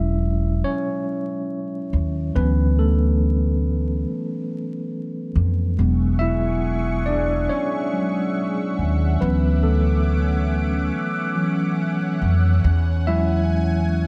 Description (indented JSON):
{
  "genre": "hip hop",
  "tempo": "70 BPM",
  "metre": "4/4",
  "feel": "swing 57% on 16ths",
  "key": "E mixolydian",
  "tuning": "A4 = 442 Hz",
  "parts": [
    { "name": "tine electric piano", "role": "accompaniment", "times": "0.0-14.1 s", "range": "E3 to E5", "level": "-25 LUFS", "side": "equal", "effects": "none" },
    { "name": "upright bass", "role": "bass", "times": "0.0-14.1 s", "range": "E1 to F2", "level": "-22 LUFS", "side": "equal", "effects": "none" },
    { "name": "lush unison pad", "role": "sustained chords", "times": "6.1-14.1 s", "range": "C#4 to D6", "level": "-32 LUFS", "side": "equal", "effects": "chorus, phaser" }
  ],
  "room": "light reverb",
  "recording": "vinyl crackle",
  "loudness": "-21 LUFS",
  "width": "mono",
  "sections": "0.0-14.1 A section",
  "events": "tine electric piano solo 0.0-14.1",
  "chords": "0.0 E69; 2.4 Dmaj9; 5.8 E69; 9.2 Dmaj9; 12.6 E69"
}